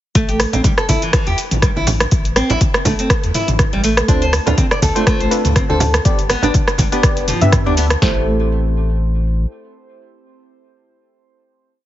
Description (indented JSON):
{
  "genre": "afro house",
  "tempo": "122 BPM",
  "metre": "4/4",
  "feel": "swing 55% on 16ths",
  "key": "A minor",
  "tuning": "A4 = 440 Hz",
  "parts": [
    { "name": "nylon-string guitar", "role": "arpeggios", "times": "0.2-8.2 s", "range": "E3 to D5", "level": "-21 LUFS", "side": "equal", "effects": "sidechain pumping, ping-pong delay" },
    { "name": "warm sub bass", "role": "bass", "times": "0.2-9.5 s", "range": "F1 to G2", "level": "-19 LUFS", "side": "equal", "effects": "sidechain pumping" },
    { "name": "deep house drum kit", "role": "drums", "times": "0.2-8.1 s", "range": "kick drum, snare drum", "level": "-16 LUFS", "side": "equal", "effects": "overdrive" },
    { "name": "deep house drum kit", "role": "drums", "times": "0.2-8.0 s", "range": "hi-hat, rim click, shaker, toms", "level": "-19 LUFS", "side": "equal", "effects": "overdrive" },
    { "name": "congas", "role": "percussion", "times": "0.4-8.0 s", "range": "none", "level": "-22 LUFS", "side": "right 2 dB", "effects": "none" },
    { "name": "deep mellow chord stab", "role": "stabs", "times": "4.1-11.9 s", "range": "B3 to E5", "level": "-21 LUFS", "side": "equal", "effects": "chorus, sidechain pumping, ping-pong delay" }
  ],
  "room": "little or no reverb",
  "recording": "heavily compressed radio sound, multiband compression, nothing above 7.7 kHz",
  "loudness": "-13 LUFS",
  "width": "side -13 dB against mid",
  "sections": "0.2-8.0 drop; 8.0-11.9 final chord",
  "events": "drop 0.2-8.0",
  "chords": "0.2 A5; 4.1 Dm7; 6.1 G; 8.0 Am7",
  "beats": "| 0.15 0.64 1.13 1.63 | 2.12 2.61 3.10 3.59 | 4.08 4.58 5.07 5.56 | 6.05 6.54 7.04 7.53 | 8.02 8.51 9.00 9.49 | 9.99 10.48 10.97 11.46"
}